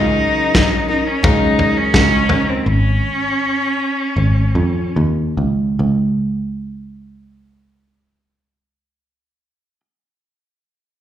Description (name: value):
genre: indie folk with a building arrangement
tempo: 71-88 BPM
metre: 4/4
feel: straight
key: unclear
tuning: A4 = 440 Hz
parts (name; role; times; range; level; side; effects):
- clear cello; melody; 0.0-5.0 s; C4 to Eb4; -18 LUFS; equal; slapback echo
- picked steel-string acoustic guitar; accompaniment; 0.0-2.7 s; Db3 to Bb4; -21 LUFS; left 5 dB; slapback echo
- picked electric bass; bass; 0.0-9.8 s; Ab1 to F2; -16 LUFS; right 1 dB; none
- loose indie drum kit; drums; 0.5-2.5 s; kick drum, snare drum, toms; -17 LUFS; equal; none
room: little or no reverb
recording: live gig heard through the venue's PA, recital hall reverb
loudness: -14 LUFS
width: side -11 dB against mid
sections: 0.0-5.8 A section; 5.8-9.2 B section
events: slowing down 0.0-5.8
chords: 0.0 Ebm/Db; 2.7 Absus4; 5.8 N.C.